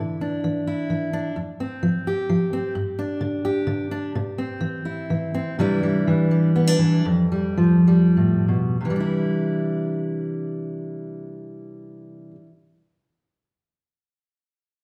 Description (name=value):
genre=folk, solo fingerstyle acoustic guitar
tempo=88-132 BPM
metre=3/4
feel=rubato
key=C major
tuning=A4 = 439 Hz
part: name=fingerpicked steel-string acoustic guitar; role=solo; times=0.0-12.5 s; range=F2 to G4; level=-23 LUFS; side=equal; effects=none
room=wet large studio reverb, RT60 1.2 s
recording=band playing live in one room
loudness=-22 LUFS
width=mono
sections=0.0-5.6 A section; 5.6-8.8 B section; 8.8-12.8 C section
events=slowing down 5.6-8.8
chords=0.0 Cadd9; 1.4 Fsus2; 2.8 G5; 4.1 C; 5.6 Cadd9; 7.1 Fadd9; 8.8 Cadd9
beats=0.44 0.91 | 1.37 1.84 2.30 | 2.75 3.21 3.68 | 4.15 4.62 5.10 | 5.59 6.07 6.55 | 7.05 7.58 8.16 | 8.81 9.48 10.15 | 10.80 11.45 12.10